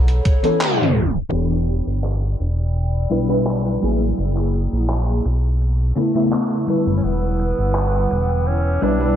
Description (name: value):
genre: vaporwave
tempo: 84 BPM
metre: 4/4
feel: straight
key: E dorian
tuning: A4 = 440 Hz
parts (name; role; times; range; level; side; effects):
- warbly tape-like pad; sustained chords; 0.0-9.2 s; G#4 to E6; -31 LUFS; left 3 dB; chorus, built-in reverb, phaser
- chorused synth bass; bass; 0.0-9.2 s; E1 to B1; -19 LUFS; equal; none
- gated 80s digital drum machine; drums; 0.1-9.1 s; handclaps, hi-hat; -28 LUFS; equal; gated reverb, low-pass filter on hats, low-pass filter on snare, low-pass filter on room
- FM electric piano with soft pad layer; accompaniment; 0.4-9.2 s; C#3 to B4; -20 LUFS; left 1 dB; tremolo, ensemble chorus, analog delay
- warm tenor saxophone; melody; 7.0-9.2 s; B3 to D4; -23 LUFS; right 2 dB; tape echo
room: moderate plate reverb, RT60 2.8 s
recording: dreamy mix soaked in reverb, low-pass filter, tape stop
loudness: -17 LUFS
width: side -10 dB against mid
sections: 0.0-1.3 A section; 1.3-9.2 B section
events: band accent 0.6-1.0; tape stop 0.6-1.3; filter sweep on ambient pad 1.3-9.2; filter sweep 1.3-9.2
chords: 0.0 B9sus4; 1.3 Em7; 4.2 F#9; 5.3 B9sus4; 7.0 Em7